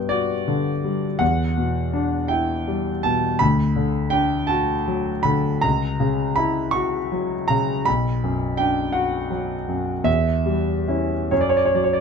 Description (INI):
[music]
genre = classical, romantic nocturne for solo piano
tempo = 44-56 BPM (dotted quarters)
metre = 12/8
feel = rubato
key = B minor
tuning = A4 = 436 Hz
[part]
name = warm concert grand piano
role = solo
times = 0.0-12.0 s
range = B1 to C#6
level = -19 LUFS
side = equal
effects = none
[sound]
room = moderate studio reverb, RT60 0.8 s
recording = none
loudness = -19 LUFS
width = side -6 dB against mid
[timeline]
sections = 0.0-12.0 A section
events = none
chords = 0.0 Gmaj7; 1.2 Em7; 3.4 Bm/D; 5.6 F#7/C#; 7.9 Bm; 10.1 C#dim/E; 11.3 F#5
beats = 0.12 | 1.21 2.30 3.41 4.50 | 5.63 6.74 7.86 8.94 | 10.07 11.31